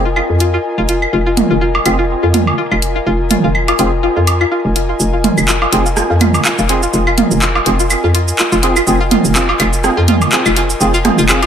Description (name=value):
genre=minimal techno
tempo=124 BPM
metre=4/4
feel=swing 55% on 16ths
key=F minor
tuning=A4 = 438 Hz
part: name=percussive organ stab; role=stabs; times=0.0-11.4 s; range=C4 to Ab4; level=-19 LUFS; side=right 2 dB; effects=ensemble chorus, analog delay
part: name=hollow knocking FM bass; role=bass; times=0.0-11.5 s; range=F1 to F2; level=-16 LUFS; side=equal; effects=none
part: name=airy breathy pad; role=texture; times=0.0-11.5 s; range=F4 to Ab5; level=-20 LUFS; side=left 3 dB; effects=chorus
part: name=string-like resonator pluck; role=riff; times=0.1-11.5 s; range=F4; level=-19 LUFS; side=left 1 dB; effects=chorus, phaser, dub echo
part: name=organic electronic drum kit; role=percussion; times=0.2-11.5 s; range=claves, rim click, toms, woodblock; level=-16 LUFS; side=right 3 dB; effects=studio reverb, dub echo
part: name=house drum kit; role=drums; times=0.4-11.5 s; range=handclaps, hi-hat, shaker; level=-17 LUFS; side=equal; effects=studio reverb, analog delay
room=moderate spring reverb, RT60 1.9 s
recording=echo-heavy mix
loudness=-11 LUFS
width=side -8 dB against mid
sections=0.0-11.5 A section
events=build-up 0.0-11.5; filter sweep on synth pluck 0.0-11.5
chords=0.0 Fm